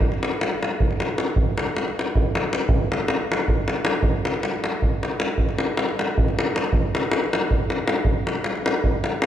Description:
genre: balkan folk.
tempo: 313 BPM (eighths).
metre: 7/8.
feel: straight.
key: none.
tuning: none.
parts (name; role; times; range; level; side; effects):
davul; percussion; 0.0-9.3 s; none; -20 LUFS; equal; none.
room: moderate concert hall reverb, RT60 2.4 s.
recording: none.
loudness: -20 LUFS.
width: side -10 dB against mid.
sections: 0.0-1.4 A section; 1.4-9.3 A section.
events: none.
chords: none.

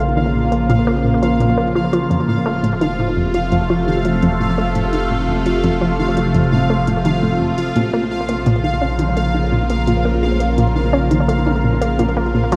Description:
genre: ambient, sequencer-driven space music.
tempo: 85 BPM.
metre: 4/4.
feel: straight.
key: Bb harmonic minor.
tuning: A4 = 440 Hz.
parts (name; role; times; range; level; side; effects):
evolving wavetable pad; sustained chords; 0.0-12.6 s; C3 to Bb4; -21 LUFS; equal; phaser, built-in reverb.
analog pluck; riff; 0.0-12.6 s; F2 to Db4; -21 LUFS; equal; chorus, delay.
warm sub bass; bass; 0.0-12.6 s; F1 to Bb1; -25 LUFS; equal; none.
pulsing gated texture; texture; 0.0-12.6 s; F5; -28 LUFS; equal; chorus, built-in reverb.
minimal click drum kit; percussion; 0.2-12.6 s; hi-hat, toms; -35 LUFS; equal; none.
room: wet echo chamber reverb, RT60 2.1 s.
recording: echo-heavy mix.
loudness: -17 LUFS.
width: mono.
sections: 0.0-12.6 A section.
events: none.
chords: 0.0 Bbm; 2.1 F; 7.8 Bbm.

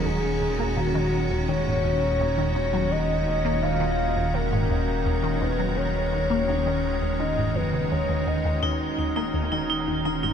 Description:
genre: ambient, sequencer-driven space music.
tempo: 84 BPM.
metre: 4/4.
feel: straight.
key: Eb minor.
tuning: A4 = 441 Hz.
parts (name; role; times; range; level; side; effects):
soft octave-layered synth lead; melody; 0.0-8.6 s; Gb4 to F5; -28 LUFS; left 2 dB; chorus, tremolo, tape echo.
evolving wavetable pad; sustained chords; 0.0-10.3 s; Eb3 to Bb5; -28 LUFS; equal; chorus, built-in reverb.
fat analog bass; bass; 0.0-10.3 s; Eb1; -29 LUFS; equal; none.
resonant blip pluck; riff; 0.1-10.3 s; Eb2 to Bb3; -28 LUFS; equal; phaser, ensemble chorus, tape echo.
vibraphone with hard mallets; arpeggios; 8.6-10.3 s; Eb4; -27 LUFS; left 1 dB; auto-pan, tape echo.
room: moderate huge ambient reverb, RT60 8.0 s.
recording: none.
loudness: -22 LUFS.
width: side -8 dB against mid.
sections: 0.0-10.3 A section.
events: none.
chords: 0.0 Ebm.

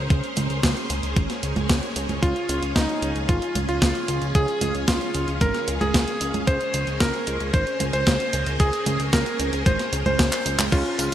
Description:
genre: italo disco.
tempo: 113 BPM.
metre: 4/4.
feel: straight.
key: unclear.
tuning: A4 = 441 Hz.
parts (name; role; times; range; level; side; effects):
string machine, full ensemble; sustained chords; 0.0-11.1 s; Ab3 to C5; -30 LUFS; equal; ensemble chorus.
fat analog bass; bass; 0.0-11.1 s; Ab1 to Db2; -28 LUFS; equal; none.
clean 12-bit digital drum machine; drums; 0.1-11.1 s; congas, crash cymbal, handclaps, hi-hat, snare drum, tambourine; -26 LUFS; right 1 dB; overdrive, gated reverb.
electronic kick drum; drums; 0.1-10.8 s; none; -21 LUFS; equal; overdrive.
bright electric grand piano; melody; 2.2-11.1 s; Db4 to C5; -25 LUFS; equal; vintage 12-bit sampler grit, digital delay.
room: moderate lush hall reverb, RT60 2.4 s.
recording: bright 1980s-style digital production, lossy compression artefacts.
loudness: -20 LUFS.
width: side -11 dB against mid.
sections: 0.0-10.7 A section.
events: drum fill 10.3-10.7.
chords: 0.0 Abadd9; 2.2 Db; 6.5 Abadd9.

